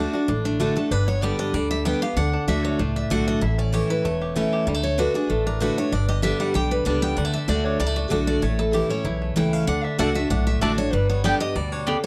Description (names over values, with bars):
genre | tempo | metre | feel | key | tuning
bluegrass | 192 BPM | 4/4 | straight | D major | A4 = 438 Hz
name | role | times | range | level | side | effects
bluegrass banjo | melody | 0.0-12.1 s | G3 to G4 | -34 LUFS | equal | slapback echo
picked steel-string acoustic guitar | accompaniment | 0.0-12.1 s | E2 to G4 | -26 LUFS | equal | none
upright bass | bass | 0.0-11.9 s | E1 to D2 | -28 LUFS | equal | none
picked steel-string acoustic guitar | melody | 0.5-12.1 s | D4 to G5 | -30 LUFS | equal | none
mandolin | stabs | 10.0-12.0 s | A3 to A5 | -26 LUFS | equal | none
room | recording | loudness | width
light reverb | dry, close 1970s-style studio recording | -23 LUFS | mono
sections
0.0-12.1 A section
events
steel-string acoustic guitar solo 0.0-12.1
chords
0.0 D; 0.9 G; 2.2 D; 3.4 A; 4.7 D; 5.9 G; 7.2 D; 8.4 A; 9.7 D; 10.9 G